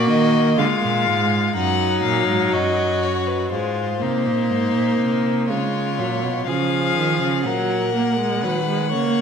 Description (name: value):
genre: classical, baroque-style fugue for string quartet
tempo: 61 BPM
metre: 4/4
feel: straight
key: unclear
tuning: A4 = 441 Hz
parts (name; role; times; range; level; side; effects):
- rich violin; melody; 0.0-9.2 s; B4 to F#5; -24 LUFS; left 7 dB; none
- rich violin; second line; 0.0-9.2 s; D#4 to C#5; -25 LUFS; left 4 dB; none
- dark viola; accompaniment; 0.0-9.2 s; E#3 to A#3; -22 LUFS; right 2 dB; none
- rich cello; bass; 0.0-9.2 s; F#2 to D#3; -24 LUFS; right 4 dB; none
room: wet scoring stage reverb, RT60 1.5 s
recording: none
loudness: -18 LUFS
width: side -7 dB against mid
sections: 0.0-3.5 A section; 3.5-9.2 B section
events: none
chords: 0.0 A#5; 1.6 D#m/F#; 3.5 G#; 5.5 C#; 7.5 F#/A#